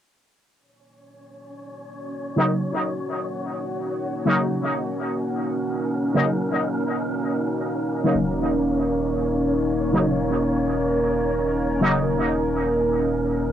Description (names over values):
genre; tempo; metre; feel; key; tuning
dub techno; free time; none; none; Eb minor; A4 = 445 Hz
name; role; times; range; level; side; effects
deep dark ambient pad; sustained chords; 2.0-13.5 s; Bb3 to Bb4; -24 LUFS; equal; chorus, built-in reverb, vintage 12-bit sampler grit, cassette tape
wind-like tuned noise texture; texture; 1.3-13.5 s; Db4 to Db5; -31 LUFS; equal; built-in reverb, cassette tape
resonant sweep polysynth; stabs; 2.4-11.9 s; Db3 to Eb4; -24 LUFS; equal; chorus, phaser, cassette tape, dub echo
soft dub sub bass; bass; 8.1-13.5 s; Eb1; -31 LUFS; equal; transformer saturation
room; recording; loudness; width
moderate booth ambience, RT60 0.2 s; home recording on cassette; -21 LUFS; side -10 dB against mid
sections
0.6-13.5 A section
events
filter sweep on analog polysynth 0.6-13.5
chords
0.6 Ebm7